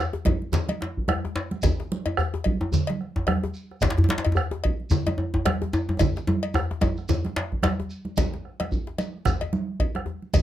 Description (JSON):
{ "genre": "west african traditional, West African drum ensemble", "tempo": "110 BPM", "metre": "4/4", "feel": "swing 57% on 16ths", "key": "none", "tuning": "none", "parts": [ { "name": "djembe", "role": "percussion", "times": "0.1-10.4 s", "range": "none", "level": "-28 LUFS", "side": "left 4 dB", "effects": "none" }, { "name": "bombo", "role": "percussion", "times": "0.3-10.4 s", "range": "none", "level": "-26 LUFS", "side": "right 1 dB", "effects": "none" }, { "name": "congas", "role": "percussion", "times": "0.3-10.4 s", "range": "none", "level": "-29 LUFS", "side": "right 4 dB", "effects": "none" }, { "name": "cowbell", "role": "percussion", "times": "0.3-10.4 s", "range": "none", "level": "-31 LUFS", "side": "left 4 dB", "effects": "none" }, { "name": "djembe", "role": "percussion", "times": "0.3-7.8 s", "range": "none", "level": "-26 LUFS", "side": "left 1 dB", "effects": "none" }, { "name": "shekere", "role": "percussion", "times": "0.5-10.4 s", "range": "none", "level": "-33 LUFS", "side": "right 1 dB", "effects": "none" } ], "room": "light reverb", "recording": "close, detailed microphones", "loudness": "-23 LUFS", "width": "side -12 dB against mid", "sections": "0.0-8.2 A section; 8.2-10.4 A section", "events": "drum fill 6.0-8.2", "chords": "none" }